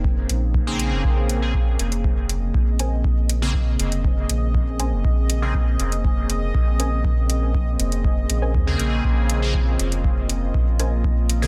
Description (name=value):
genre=dub techno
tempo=120 BPM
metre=4/4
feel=straight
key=Bb minor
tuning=A4 = 440 Hz
part: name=warbly tape-like pad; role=sustained chords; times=0.0-11.5 s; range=Db3 to Ab4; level=-32 LUFS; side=equal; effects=chorus, built-in reverb, sidechain pumping
part: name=soft dub sub bass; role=bass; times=0.0-11.5 s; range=F1 to Eb2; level=-25 LUFS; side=equal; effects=tube saturation, sidechain pumping
part: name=electronic kick drum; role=drums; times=0.0-11.1 s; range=none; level=-24 LUFS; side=equal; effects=overdrive
part: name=electronic hi-hat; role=drums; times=0.3-11.4 s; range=none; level=-29 LUFS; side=equal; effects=overdrive
part: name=resonant sweep polysynth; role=stabs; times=0.7-5.5, 8.7-11.5 s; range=Db3 to Ab4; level=-31 LUFS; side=equal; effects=chorus, phaser, sidechain pumping, dub echo
part: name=bubbling stepped-filter texture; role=texture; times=1.8-11.5 s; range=Eb5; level=-37 LUFS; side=equal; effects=chorus, built-in reverb, sidechain pumping
part: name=warbly dusty pluck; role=riff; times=2.8-11.0 s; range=Db4 to Ab5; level=-37 LUFS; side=equal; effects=chorus, sidechain pumping, dub echo
room=little or no reverb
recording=dense, heavily limited modern master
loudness=-21 LUFS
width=mono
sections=0.0-11.5 A section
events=none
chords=0.0 Bbm9